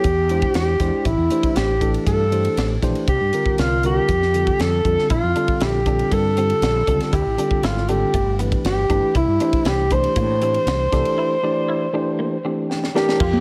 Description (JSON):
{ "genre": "electric jazz fusion", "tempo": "118 BPM", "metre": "4/4", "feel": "straight", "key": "C mixolydian", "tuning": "A4 = 440 Hz", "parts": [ { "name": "breathy alto saxophone", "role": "melody", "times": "0.0-13.4 s", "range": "E4 to C5", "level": "-23 LUFS", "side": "equal", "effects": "slapback echo" }, { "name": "tine electric piano", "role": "accompaniment", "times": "0.0-13.2 s", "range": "D3 to A5", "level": "-27 LUFS", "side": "equal", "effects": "none" }, { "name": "fretless electric bass", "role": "bass", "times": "0.0-13.4 s", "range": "G1 to A2", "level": "-25 LUFS", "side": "equal", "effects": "none" }, { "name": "crisp fusion drum kit", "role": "drums", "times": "0.0-13.3 s", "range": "crash cymbal, hi-hat, kick drum, ride cymbal, snare drum", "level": "-27 LUFS", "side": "equal", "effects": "none" }, { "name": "clean electric guitar", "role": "stabs", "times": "5.1-13.4 s", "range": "A3 to F4", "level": "-34 LUFS", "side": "equal", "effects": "none" }, { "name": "congas", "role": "percussion", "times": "13.3-13.4 s", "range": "none", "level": "-20 LUFS", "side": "equal", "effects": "none" } ], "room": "light reverb, studio ambience", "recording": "none", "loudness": "-19 LUFS", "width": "mono", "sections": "0.0-13.2 A section", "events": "break 11.2-13.2; tine electric piano fill 12.2-13.2; drum fill 12.7-13.2", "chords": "0.0 E7alt; 1.1 Am7; 3.1 Csus2; 4.1 F69; 5.1 Bbmaj7; 7.1 Dm7; 8.1 G69; 9.2 C13", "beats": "0.04 0.55 | 1.06 1.56 2.07 2.58 | 3.08 3.59 4.09 4.60 | 5.11 5.61 6.12 6.63 | 7.13 7.64 8.14 8.65 | 9.16 9.66 10.17 10.68 | 11.18 11.69 12.19 12.70 | 13.21" }